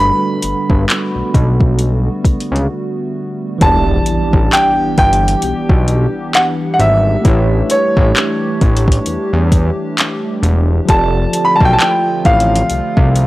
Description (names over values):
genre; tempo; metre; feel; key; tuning
contemporary R&B; 66 BPM; 4/4; swing 58% on 16ths; E dorian; A4 = 439 Hz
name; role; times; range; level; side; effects
clear baby grand piano; melody; 0.0-13.3 s; C#5 to B5; -15 LUFS; equal; none
tine electric piano; accompaniment; 0.0-13.3 s; E3 to D5; -21 LUFS; right 1 dB; medium stereo tremolo
hollow soft pad; sustained chords; 0.0-13.3 s; D3 to G4; -22 LUFS; left 1 dB; chorus
fat analog bass; bass; 0.0-13.3 s; E1 to E2; -14 LUFS; equal; none
smooth R&B drum kit; drums; 0.4-13.3 s; handclaps, hi-hat, kick drum; -14 LUFS; equal; none
impact; sound effects; 3.7-7.2 s; none; -22 LUFS; equal; none
room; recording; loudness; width
little or no reverb; dry, gritty hardware recording, transformer saturation; -11 LUFS; side -18 dB against mid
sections
0.0-3.6 A section; 3.6-13.3 B section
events
break 2.7-3.6; impact 3.6-7.3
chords
0.0 Gmaj9; 3.6 Em7; 7.3 A7; 10.9 F6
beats
0.89 1.80 2.71 | 3.61 4.52 5.43 6.34 | 7.25 8.16 9.07 9.98 | 10.89 11.80 12.71